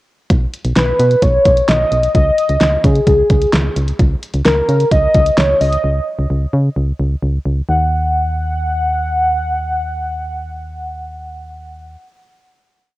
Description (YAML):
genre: synth-pop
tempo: 130 BPM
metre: 4/4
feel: straight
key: Eb minor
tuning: A4 = 440 Hz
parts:
  - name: solid FM bass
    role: bass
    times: 0.3-12.0 s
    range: B1 to Db3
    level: -17 LUFS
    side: equal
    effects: none
  - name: pop drum kit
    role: drums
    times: 0.3-5.8 s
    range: hi-hat, kick drum, snare drum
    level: -15 LUFS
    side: equal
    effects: overdrive, cassette tape
  - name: warm velvety synth lead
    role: melody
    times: 0.8-12.0 s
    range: Ab4 to Gb5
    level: -16 LUFS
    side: equal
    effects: chorus, cassette tape, analog delay
room: light reverb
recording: home recording on cassette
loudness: -12 LUFS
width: side -17 dB against mid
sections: 0.3-7.7 pre-chorus; 7.7-11.4 final chord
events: none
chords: 0.3 B; 2.1 Dbsus2; 7.7 Ebm